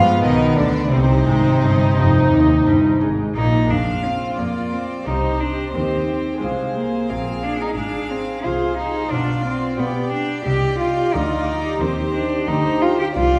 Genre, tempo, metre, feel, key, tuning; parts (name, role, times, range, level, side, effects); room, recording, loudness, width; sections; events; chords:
classical, baroque-style concerto movement with solo episodes; 89 BPM; 4/4; straight; C minor; A4 = 442 Hz
dark cello; melody; 0.0-13.4 s; C3 to G4; -24 LUFS; equal
warm studio violin section; melody; 0.0-13.4 s; C5 to G5; -31 LUFS; equal
clear chamber violin section; second line; 0.0-13.4 s; C4 to F5; -29 LUFS; equal
lute; accompaniment; 0.0-13.4 s; Eb2 to F4; -32 LUFS; equal
warm symphonic viola section; accompaniment; 0.0-13.4 s; B3 to Ab4; -26 LUFS; equal
dark chamber double bass section; bass; 0.0-13.4 s; F1 to B2; -26 LUFS; equal
warm chamber cello section; bass; 0.0-13.4 s; Eb2 to B3; -28 LUFS; equal
wet recital hall reverb, RT60 1.4 s; heard from further back in the room; -19 LUFS; mono
0.0-3.7 A section; 3.7-13.4 B section
0.0 G7 (rootless); 0.9 Cm; 3.7 Fm; 5.1 Cm; 6.4 Fm; 9.1 G7/B; 10.5 Cm